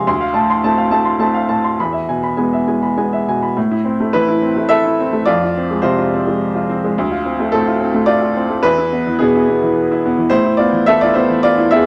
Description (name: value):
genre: neoclassical minimalist piano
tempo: 107 BPM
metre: 3/4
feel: rubato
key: A harmonic minor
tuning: A4 = 439 Hz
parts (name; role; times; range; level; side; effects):
- clear baby grand piano; solo; 0.0-11.9 s; D2 to C6; -16 LUFS; equal; none
room: light reverb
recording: none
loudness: -16 LUFS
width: mono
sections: 0.0-3.6 A section; 3.6-11.9 B section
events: none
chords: 0.1 Dm7; 1.8 E; 3.6 Amadd9; 5.3 Fm; 7.0 Dm7; 8.7 E; 10.3 Asus2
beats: | 0.07 0.63 1.19 | 1.78 2.38 2.97 | 3.56 4.13 4.70 | 5.27 5.84 6.40 | 6.96 7.53 8.09 | 8.65 9.21 9.77 | 10.33 10.89 11.45